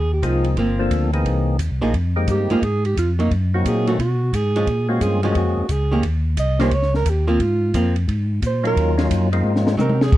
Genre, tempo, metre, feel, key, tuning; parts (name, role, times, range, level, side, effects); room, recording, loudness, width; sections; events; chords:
soul jazz organ trio; 176 BPM; 4/4; swing 65% on 8ths; Ab major; A4 = 439 Hz
dark alto saxophone; melody; 0.0-10.2 s; F4 to Eb5; -23 LUFS; right 3 dB
tonewheel organ; bass; 0.0-10.2 s; G1 to C3; -20 LUFS; equal; slow rotary speaker
percussive tonewheel organ; melody; 0.2-9.8 s; Fb3 to A4; -23 LUFS; left 2 dB; slow rotary speaker, overdrive
compact cocktail drum kit; drums; 0.2-10.2 s; crash cymbal, hi-hat, kick drum, ride cymbal, snare drum, toms; -22 LUFS; equal
archtop guitar, miked and amplified; accompaniment; 0.6-10.0 s; Eb3 to G#4; -22 LUFS; right 1 dB
little or no reverb; dark, warm production; -17 LUFS; side -15 dB against mid
0.0-10.1 A section
alto saxophone solo 0.0-10.2; drum fill 9.4-10.1
0.0 Ab69; 0.6 Gm11; 1.2 C7alt; 1.9 Fm11; 3.3 Cm7b5; 4.0 Bsus2; 4.7 Bbm7; 6.0 Eb7; 7.4 Ab69; 8.8 Ebm7; 9.4 Ab7